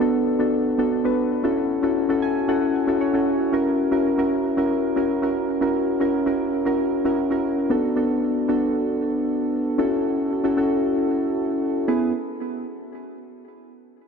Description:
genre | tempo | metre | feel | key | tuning
pop | 115 BPM | 4/4 | straight | unclear | A4 = 443 Hz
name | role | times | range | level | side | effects
soft electric-piano-like synth keys | solo | 0.0-12.1 s | B3 to G#5 | -20 LUFS | equal | chorus, digital delay
room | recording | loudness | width
wet lush hall reverb, RT60 3.3 s | dark, warm production | -20 LUFS | side -6 dB against mid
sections
0.0-7.7 A section; 7.7-11.9 B section; 11.9-14.0 C section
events
synth keys fill 2.0-3.5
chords
0.0 Bm7; 1.4 F#m7; 3.5 F#7; 7.7 Bm7; 9.8 F#m7; 11.9 E

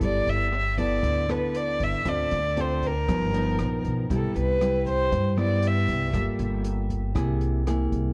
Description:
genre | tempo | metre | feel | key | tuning
bossa nova | 118 BPM | 4/4 | straight | G major, C major from 4.1 s | A4 = 440 Hz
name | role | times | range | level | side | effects
rich violin | melody | 0.0-6.2 s | A4 to E5 | -29 LUFS | equal | tape echo
nylon-string guitar | accompaniment | 0.0-8.1 s | G2 to A4 | -31 LUFS | equal | none
upright bass | bass | 0.0-8.1 s | G1 to G2 | -30 LUFS | equal | none
open jazz drum kit | drums | 0.0-8.0 s | hi-hat, kick drum, rim click | -38 LUFS | equal | none
room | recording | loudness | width
light reverb | worn, warbling old tape, cassette tape, warbly pitch drift | -25 LUFS | mono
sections
0.0-4.1 A section; 4.1-8.1 B section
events
violin solo 4.1-8.1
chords
0.0 G69; 2.1 Dm7; 3.1 G7alt; 4.1 Cmaj7; 6.1 Gm9; 7.2 Caug7

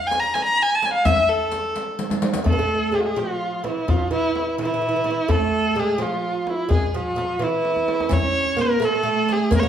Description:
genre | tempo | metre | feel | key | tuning
Persian modal ensemble | 85 BPM (dotted quarters) | 6/8 | straight | A dastgah chahargah | A4 = 436 Hz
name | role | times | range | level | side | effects
rich kamancheh | melody | 0.0-9.7 s | E4 to Bb5+45c | -21 LUFS | equal | none
riq | percussion | 0.1-2.4, 8.1-9.6 s | none | -28 LUFS | right 1 dB | none
tombak | percussion | 0.1-9.6 s | none | -25 LUFS | left 2 dB | none
oud | second line | 2.4-9.7 s | E3 to C#4 | -23 LUFS | right 3 dB | none
room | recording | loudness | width
wet large studio reverb, RT60 1.1 s | band playing live in one room | -19 LUFS | side -9 dB against mid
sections
0.0-2.5 A section; 2.5-9.7 B section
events
drum fill 2.0-2.5, 7.6-8.1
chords
none

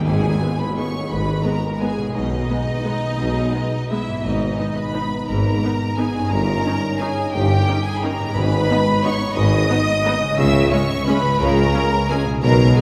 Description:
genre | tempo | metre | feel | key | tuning
classical, orchestral ballroom waltz | 160-191 BPM | 3/4 | rubato | G# minor | A4 = 440 Hz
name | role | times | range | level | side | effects
clear symphonic violin section | melody | 0.0-12.8 s | D#5 to E6 | -30 LUFS | equal | none
rich symphonic violin section | second line | 0.0-12.8 s | D#4 to E5 | -27 LUFS | equal | none
warm symphonic viola section | accompaniment | 0.0-12.8 s | G#3 to D#4 | -29 LUFS | equal | none
mellow French horn section | sustained chords | 0.0-12.8 s | G#3 to D#4 | -32 LUFS | equal | none
concert harp | arpeggios | 0.0-12.8 s | G2 to D#5 | -30 LUFS | equal | none
rich studio double bass section | bass | 0.0-12.7 s | G1 to C#2 | -27 LUFS | equal | none
timpani | percussion | 0.0-0.6, 8.4-8.8 s | G#2 | -29 LUFS | equal | none
rich symphonic cello section | bass | 0.1-12.7 s | G2 to C#3 | -27 LUFS | equal | none
warm tuba | bass | 0.1-12.7 s | G1 to C#2 | -28 LUFS | equal | none
tam-tam | percussion | 0.1-1.4 s | none | -37 LUFS | equal | none
room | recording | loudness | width
wet cathedral reverb, RT60 4.3 s | recorded in a church or concert hall | -19 LUFS | mono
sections
0.1-12.8 A section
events
band accent 0.1-0.4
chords
0.1 G#m; 2.1 G#m/B; 4.2 G#m; 6.3 D#7/G; 8.4 G#m; 10.4 C#m

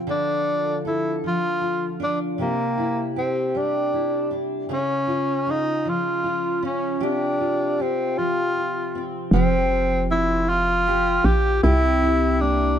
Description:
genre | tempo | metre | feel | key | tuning
six-eight pop ballad | 52 BPM (dotted quarters) | 6/8 | straight | F major | A4 = 439 Hz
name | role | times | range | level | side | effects
fingerpicked steel-string acoustic guitar | accompaniment | 0.0-12.8 s | C3 to A4 | -25 LUFS | left 1 dB | double-tracked left and right, plate reverb
breathy tenor saxophone | melody | 0.1-12.8 s | Bb3 to G4 | -22 LUFS | equal | plate reverb
hollow knocking FM bass | bass | 9.3-12.8 s | F1 to C2 | -22 LUFS | equal | none
room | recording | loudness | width
light reverb | none | -20 LUFS | side -9 dB against mid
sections
0.0-9.3 A section; 9.3-12.8 B section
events
none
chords
0.1 Dm; 2.4 Cadd9; 4.7 Db; 7.0 Fsus2/C; 9.3 Fsus2; 11.6 C7

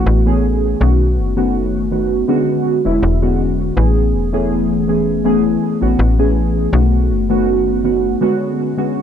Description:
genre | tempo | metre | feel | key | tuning
vaporwave | 81 BPM | 4/4 | straight | A major | A4 = 440 Hz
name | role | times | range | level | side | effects
warbly lo-fi synth keys | accompaniment | 0.0-9.0 s | D3 to G#4 | -15 LUFS | equal | wide subtle chorus, tape echo
slap-like FM bass | bass | 0.0-8.2 s | E1 to B1 | -17 LUFS | left 1 dB | tube saturation
room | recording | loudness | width
moderate recital hall reverb, RT60 1.6 s | none | -13 LUFS | side -8 dB against mid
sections
0.0-9.0 A section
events
none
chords
0.0 Amaj9; 0.8 B7; 2.3 E13; 3.8 Amaj9; 6.7 B7; 8.2 E13 (rootless)

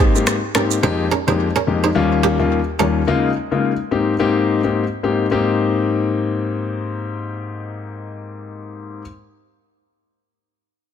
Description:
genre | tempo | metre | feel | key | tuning
afrobeats | 107 BPM | 4/4 | swing 58% on 16ths | Ab major | A4 = 439 Hz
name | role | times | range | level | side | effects
warm grand piano | accompaniment | 0.0-9.0 s | Eb2 to G4 | -18 LUFS | left 4 dB | none
kora | riff | 0.0-2.9 s | Bb3 to C5 | -22 LUFS | right 7 dB | ping-pong delay
electronic shaker, finger snaps and rim click | drums | 0.2-0.8 s | none | -17 LUFS | right 1 dB | soft clipping on snare
room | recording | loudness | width
light reverb, small room ambience | dense, heavily limited modern master | -16 LUFS | side -8 dB against mid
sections
0.0-5.3 A section; 5.3-7.6 B section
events
none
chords
0.0 Abmaj7; 0.8 Fm11; 2.0 Eb7; 3.1 Db6; 3.9 Abmaj7

